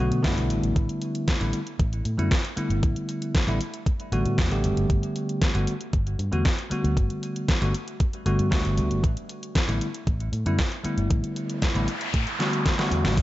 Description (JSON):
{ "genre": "nu-disco, nu disco", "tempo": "116 BPM", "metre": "4/4", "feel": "straight", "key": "unclear", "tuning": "A4 = 440 Hz", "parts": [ { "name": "bell-like tine electric piano", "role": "accompaniment", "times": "0.0-13.2 s", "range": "D3 to G4", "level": "-28 LUFS", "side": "equal", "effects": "sidechain pumping, tape echo" }, { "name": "fingered electric bass with an envelope filter", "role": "bass", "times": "0.0-13.2 s", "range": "G1 to B2", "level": "-26 LUFS", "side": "equal", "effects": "none" }, { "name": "pop drum kit", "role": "drums", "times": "0.1-13.2 s", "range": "crash cymbal, hi-hat, snare drum", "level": "-30 LUFS", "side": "equal", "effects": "overdrive" }, { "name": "electronic kick drum", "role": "drums", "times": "0.2-13.2 s", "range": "none", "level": "-24 LUFS", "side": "equal", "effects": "overdrive" }, { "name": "noise sweep", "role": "sound effects", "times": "11.4-13.2 s", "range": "none", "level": "-30 LUFS", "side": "equal", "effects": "none" } ], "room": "light reverb, digital ambience", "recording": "nothing above 7.8 kHz", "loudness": "-23 LUFS", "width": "side -16 dB against mid", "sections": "0.0-13.2 A section", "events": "noise sweep 11.4-13.2; drum fill 12.8-13.2", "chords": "0.0 Bm7; 0.5 Gmaj9" }